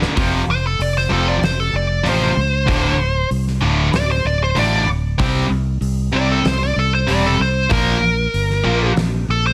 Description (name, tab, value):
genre	hard rock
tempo	95 BPM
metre	4/4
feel	straight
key	unclear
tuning	A4 = 439 Hz
part	heavy high-gain guitar	riff	0.0-8.9 s	D2 to C4	-25 LUFS	equal	distortion
part	sludgy distorted guitar	riff	0.0-8.9 s	D2 to C4	-24 LUFS	equal	overdrive
part	fingered electric bass	bass	0.0-9.5 s	D1 to C#2	-22 LUFS	equal	none
part	huge arena drum kit	drums	0.0-9.1 s	hi-hat, kick drum, snare drum	-27 LUFS	equal	none
part	nasal lead guitar with a parked wah	melody	0.5-9.5 s	A4 to D5	-22 LUFS	equal	overdrive
room	light reverb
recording	none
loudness	-18 LUFS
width	mono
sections	0.2-9.5 A section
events	drum fill 0.0; lead electric guitar solo 0.2-9.5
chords	0.2 F5; 2.7 D5; 5.2 C5; 7.7 Bb5